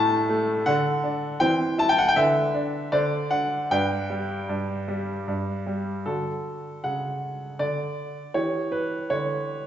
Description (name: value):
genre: classical-period piano sonatina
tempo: 78 BPM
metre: 3/4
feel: uneven beats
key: G major, D major from 6.1 s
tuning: A4 = 439 Hz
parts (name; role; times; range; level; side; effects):
- bright baby grand piano; solo; 0.0-9.7 s; G2 to C#6; -23 LUFS; equal; none
room: wet recital hall reverb, RT60 1.7 s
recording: heard from further back in the room, nothing above 7.8 kHz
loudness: -23 LUFS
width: side -10 dB against mid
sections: 0.0-6.1 A section; 6.1-9.7 B section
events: none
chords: 0.0 A7; 0.7 D; 1.4 C/E; 2.2 Bmadd11/D; 2.9 D7; 3.7 G; 6.1 D; 8.3 C#m7b5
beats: 0.66 | 1.40 2.15 2.92 | 3.70 4.49 5.27 | 6.05 6.84 7.60 | 8.35 9.10